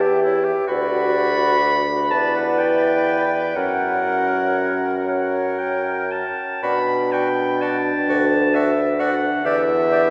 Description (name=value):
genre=classical, slow romantic movement for wind quintet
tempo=38-44 BPM (dotted quarters)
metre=6/8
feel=rubato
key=B minor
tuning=A4 = 440 Hz
part: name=concert flute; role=melody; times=0.0-10.0 s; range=C#5 to E5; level=-30 LUFS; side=equal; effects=none
part: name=clear oboe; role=second line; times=0.0-10.1 s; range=E4 to B4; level=-31 LUFS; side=equal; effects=none
part: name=mellow French horn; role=accompaniment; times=0.0-10.1 s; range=C#4 to G4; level=-28 LUFS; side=equal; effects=none
part: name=mellow bassoon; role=bass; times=0.0-10.1 s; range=D2 to B2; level=-24 LUFS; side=equal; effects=none
part: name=clear clarinet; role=accompaniment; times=0.7-10.1 s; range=E5 to B5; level=-24 LUFS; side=equal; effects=none
room=wet cathedral reverb, RT60 6.2 s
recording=recorded in a church or concert hall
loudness=-20 LUFS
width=mono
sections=0.0-10.1 A section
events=none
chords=0.0 C#dim/E; 0.7 Bm/D; 2.1 Em7; 3.6 F#; 6.6 Bm; 8.1 D; 9.5 Em7